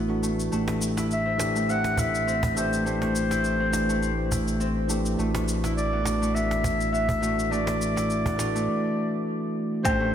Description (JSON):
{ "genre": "organic downtempo", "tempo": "103 BPM", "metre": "4/4", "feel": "swing 55% on 16ths", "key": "unclear", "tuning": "A4 = 440 Hz", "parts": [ { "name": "bell-like tine electric piano", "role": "accompaniment", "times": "0.0-10.1 s", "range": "E3 to G4", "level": "-30 LUFS", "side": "equal", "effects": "sidechain pumping, ping-pong delay, slapback echo" }, { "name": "Celtic harp", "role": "arpeggios", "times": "0.0-10.1 s", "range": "A3 to E4", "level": "-29 LUFS", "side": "equal", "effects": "low-pass filter, ping-pong delay, slapback echo" }, { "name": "smooth gliding synth bass", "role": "bass", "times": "0.0-10.1 s", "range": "A1", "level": "-31 LUFS", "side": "equal", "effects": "sidechain pumping" }, { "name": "electronic shaker, hi-hat and woodblock", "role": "drums", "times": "0.2-10.0 s", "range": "none", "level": "-34 LUFS", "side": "left 1 dB", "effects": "none" }, { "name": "cajon", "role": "percussion", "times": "0.7-8.5 s", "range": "none", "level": "-34 LUFS", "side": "right 1 dB", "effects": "none" }, { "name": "warm clarinet", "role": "melody", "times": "1.1-10.1 s", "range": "C5 to F#5", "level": "-28 LUFS", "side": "left 1 dB", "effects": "ping-pong delay, slapback echo" }, { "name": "electronic kick drum", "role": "drums", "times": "9.8-10.0 s", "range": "none", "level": "-27 LUFS", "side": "equal", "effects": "none" } ], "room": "wet concert hall reverb, RT60 2.5 s", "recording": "big arena sound", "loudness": "-23 LUFS", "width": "side -9 dB against mid", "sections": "0.0-9.8 A section", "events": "break 8.7-9.8", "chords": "0.0 Bm7/A; 0.5 Am7; 5.2 Bm7/A", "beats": "| 0.52 1.11 1.69 2.27 | 2.85 3.44 4.02 4.60 | 5.18 5.77 6.35 6.93 | 7.51 8.10 8.68 9.26 | 9.84" }